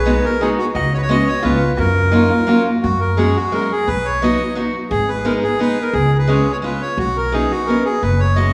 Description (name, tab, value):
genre	musette waltz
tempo	174 BPM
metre	3/4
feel	straight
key	F# major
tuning	A4 = 440 Hz
part	accordion	melody	0.0-8.5 s	F#4 to D#5	-22 LUFS	equal	none
part	hollow-body jazz guitar	second line	0.0-2.8 s	D#4 to G#4	-27 LUFS	equal	none
part	upright bass	bass	0.0-8.5 s	F#1 to F#2	-22 LUFS	equal	none
part	picked acoustic archtop guitar	accompaniment	0.1-8.5 s	F#3 to G#4	-21 LUFS	equal	none
room	wet scoring stage reverb, RT60 1.8 s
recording	recorded in a church or concert hall, small room ambience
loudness	-17 LUFS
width	mono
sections	0.0-2.8 A section; 2.8-8.5 B section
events	none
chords	0.0 B6; 0.8 C#7sus4; 1.4 C#7; 1.8 F#maj7; 2.8 F#sus2; 3.9 B; 4.9 G#m; 5.9 C#7; 7.0 Badd9; 8.0 F#sus2